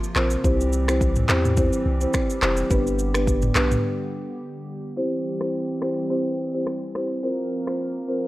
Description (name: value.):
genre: afrobeats.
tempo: 106 BPM.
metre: 4/4.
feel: swing 55% on 16ths.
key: C major.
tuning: A4 = 440 Hz.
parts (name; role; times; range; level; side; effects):
hollow soft pad; sustained chords; 0.0-8.3 s; C3 to Bb4; -32 LUFS; equal; chorus.
afro-pop drum kit; drums; 0.0-7.8 s; finger snaps, handclaps, kick drum, rim click, shaker, toms; -23 LUFS; equal; none.
marimba with soft mallets; accompaniment; 0.2-8.3 s; B3 to C5; -24 LUFS; equal; none.
punchy sub bass; bass; 0.2-3.8 s; F1 to E2; -23 LUFS; equal; none.
room: digital ambience.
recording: dry, gritty hardware recording, low-pass filter.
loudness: -21 LUFS.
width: side -17 dB against mid.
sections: 0.0-5.0 A section; 5.0-8.3 B section.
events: break 3.8-5.0; filter sweep 5.0-8.3.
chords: 0.4 C; 2.7 G; 5.0 C; 7.2 Bbsus2.